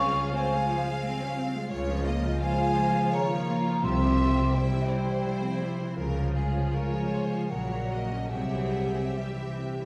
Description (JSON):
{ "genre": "classical", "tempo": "71-88 BPM", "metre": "3/4", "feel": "rubato", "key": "unclear", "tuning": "A4 = 440 Hz", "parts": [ { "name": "warm symphonic violin section", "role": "melody", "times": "0.0-9.9 s", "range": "G4 to F5", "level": "-40 LUFS", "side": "equal", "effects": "none" }, { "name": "clear symphonic violin section", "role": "second line", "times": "0.0-9.9 s", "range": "F4 to F5", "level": "-40 LUFS", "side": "equal", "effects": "none" }, { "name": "mellow hollow silver concert flute", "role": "second line", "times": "0.0-9.9 s", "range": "E5 to Db6", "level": "-34 LUFS", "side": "equal", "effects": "none" }, { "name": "rich symphonic viola section", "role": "accompaniment", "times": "0.0-9.9 s", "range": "C3 to G4", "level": "-37 LUFS", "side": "equal", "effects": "none" }, { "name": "mellow French horn section", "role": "sustained chords", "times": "0.0-9.9 s", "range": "E3 to Db4", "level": "-35 LUFS", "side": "equal", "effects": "none" }, { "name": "concert harp", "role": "arpeggios", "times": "0.0-9.9 s", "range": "Bb2 to C5", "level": "-34 LUFS", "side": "equal", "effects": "none" }, { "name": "rich symphonic cello section", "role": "bass", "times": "0.0-9.0 s", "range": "Bb2 to Db3", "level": "-38 LUFS", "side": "equal", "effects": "none" }, { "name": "rich symphonic double bass section", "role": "bass", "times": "0.0-9.0 s", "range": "Bb1 to Db2", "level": "-36 LUFS", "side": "equal", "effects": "none" }, { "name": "timpani", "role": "percussion", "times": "3.8-4.8, 8.3-9.5 s", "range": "C3", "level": "-40 LUFS", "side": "equal", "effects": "none" } ], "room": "wet recital hall reverb, RT60 1.4 s", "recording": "recorded in a church or concert hall, vinyl crackle", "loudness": "-28 LUFS", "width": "mono", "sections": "0.0-9.9 A section", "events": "none", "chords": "0.0 Dbmaj7; 1.7 Bbm/Db; 3.8 C; 6.0 Db; 7.5 Gb/Bb; 8.3 C", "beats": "0.34 1.03 | 1.71 2.41 3.13 | 3.84 4.54 5.24 | 5.97 6.72 7.50 | 8.32 9.15" }